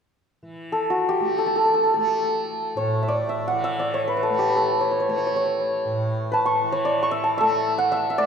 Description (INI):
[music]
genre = indian classical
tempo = free time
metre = none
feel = none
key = A raga khamaj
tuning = A4 = 440 Hz
[part]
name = tanpura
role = drone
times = 0.4-8.3 s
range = A2 to A3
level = -31 LUFS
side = equal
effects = none
[part]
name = santur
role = melody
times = 0.7-8.3 s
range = F#4 to C#6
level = -20 LUFS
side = equal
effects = none
[sound]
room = wet concert hall reverb, RT60 2.4 s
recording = recorded in a church or concert hall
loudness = -20 LUFS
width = side -6 dB against mid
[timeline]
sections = 0.4-8.3 A section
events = none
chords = none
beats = free time